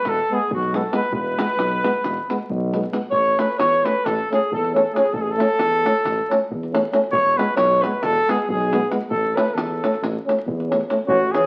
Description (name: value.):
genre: balkan folk, Balkan brass band.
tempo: 270 BPM (eighths).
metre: 9/8.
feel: straight.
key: A major.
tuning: A4 = 440 Hz.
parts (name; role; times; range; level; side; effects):
mellow trumpet; melody; 0.0-11.5 s; F#4 to C#5; -24 LUFS; equal; none.
warm alto saxophone; second line; 0.0-11.5 s; F#4 to C#5; -27 LUFS; equal; none.
mellow tuba; bass; 0.0-11.3 s; E1 to E2; -30 LUFS; equal; none.
davul; percussion; 0.1-11.4 s; none; -31 LUFS; equal; none.
warm euphonium; accompaniment; 0.3-11.4 s; B3 to C#4; -24 LUFS; equal; none.
warm euphonium; accompaniment; 0.3-11.4 s; E3 to A3; -30 LUFS; equal; none.
room: wet studio reverb, RT60 0.7 s.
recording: very old 78 rpm record, vinyl crackle.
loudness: -20 LUFS.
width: mono.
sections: 0.0-11.1 A section.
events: none.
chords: 0.0 E; 3.1 A; 7.1 E; 9.1 A.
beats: 0.00 0.22 0.44 0.67 0.89 | 1.11 1.33 1.55 1.78 2.00 2.22 2.44 2.67 2.89 | 3.11 3.33 3.56 3.78 4.00 4.22 4.44 4.67 4.89 | 5.11 5.33 5.55 5.78 6.00 6.22 6.44 6.66 6.88 | 7.11 7.33 7.55 7.77 7.99 8.21 8.43 8.65 8.88 | 9.10 9.32 9.54 9.76 9.98 10.20 10.42 10.64 10.86 | 11.08 11.30.